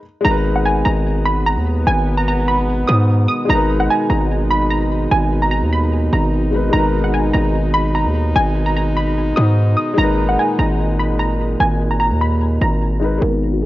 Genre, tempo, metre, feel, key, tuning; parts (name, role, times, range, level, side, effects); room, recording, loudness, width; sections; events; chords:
hip hop; 148 BPM; 4/4; half-time; G# minor; A4 = 439 Hz
clear concert grand piano; accompaniment; 0.0-13.7 s; G#3 to B4; -24 LUFS; left 3 dB; low-pass filter
warbly dusty pluck; melody; 0.2-13.7 s; F#4 to D#6; -20 LUFS; right 1 dB; chorus, low-pass filter, ping-pong delay
bright brass ensemble; sustained chords; 0.2-13.7 s; A#2 to D#4; -22 LUFS; right 1 dB; low-pass filter
distorted 808-style bass; bass; 0.2-13.7 s; G#1 to G#2; -17 LUFS; equal; distortion
light reverb; worn, warbling old tape, cassette tape, warbly pitch drift, nothing above 7.6 kHz; -14 LUFS; side -16 dB against mid
0.2-13.2 A section
stop 0.0
0.2 G#madd9